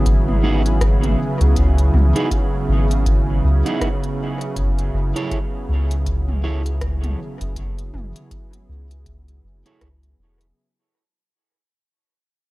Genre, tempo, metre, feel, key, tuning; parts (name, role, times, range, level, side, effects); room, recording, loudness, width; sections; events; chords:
ambient dub; 80 BPM; 4/4; swing 59% on 16ths; A4 = 440 Hz
warm analog pad; sustained chords; 0.0-10.6 s; C#3 to G#4; -24 LUFS; right 2 dB; chorus
soft dub sub bass; bass; 0.0-10.5 s; E1 to C#2; -18 LUFS; equal; tube saturation
electronic kick drum; drums; 0.1-10.0 s; -23 LUFS; equal; overdrive
organic electronic drum kit; drums; 0.1-10.5 s; hi-hat, rim click, toms; -30 LUFS; right 1 dB; overdrive, dub echo
electric guitar at the edge of break-up; stabs; 0.4-9.9 s; B3 to C#5; -27 LUFS; right 2 dB; dub echo
little or no reverb; -17 LUFS; side -19 dB against mid
0.0-10.6 A section
fade-out 2.6-10.6
0.0 C#m7; 4.6 F#7(no3)